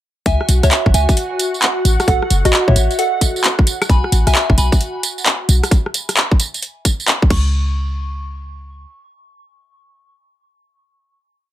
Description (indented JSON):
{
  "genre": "UK garage, two-step garage",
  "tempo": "132 BPM",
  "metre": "4/4",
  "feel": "swing 65% on 16ths",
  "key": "unclear",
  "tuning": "A4 = 438 Hz",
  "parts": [
    { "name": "soft synth bell", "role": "melody", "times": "0.3-11.5 s", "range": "F#4 to C#6", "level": "-22 LUFS", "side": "equal", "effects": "chorus, phaser, dub echo" },
    { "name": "warm analog pad", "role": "sustained chords", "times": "0.3-5.7 s", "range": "F#4 to F#5", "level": "-24 LUFS", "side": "equal", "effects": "chorus, sidechain pumping" },
    { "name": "short 808-style bass", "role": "bass", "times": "0.3-8.9 s", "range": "F#1 to A2", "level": "-15 LUFS", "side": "equal", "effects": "none" },
    { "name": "electronic kick drum", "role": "drums", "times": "0.3-7.4 s", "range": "none", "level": "-14 LUFS", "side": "equal", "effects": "small room ambience" },
    { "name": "garage drum kit", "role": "drums", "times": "0.3-7.4 s", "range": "claves, crash cymbal, handclaps, hi-hat, rim click, tambourine", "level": "-18 LUFS", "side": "equal", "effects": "small room ambience" }
  ],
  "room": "light reverb",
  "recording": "none",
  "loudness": "-13 LUFS",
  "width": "side -13 dB against mid",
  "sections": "0.3-7.5 drop; 7.5-11.2 final hit",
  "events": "drop 0.3-7.5",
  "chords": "0.3 C#m; 1.9 A5; 3.7 B5; 5.7 N.C."
}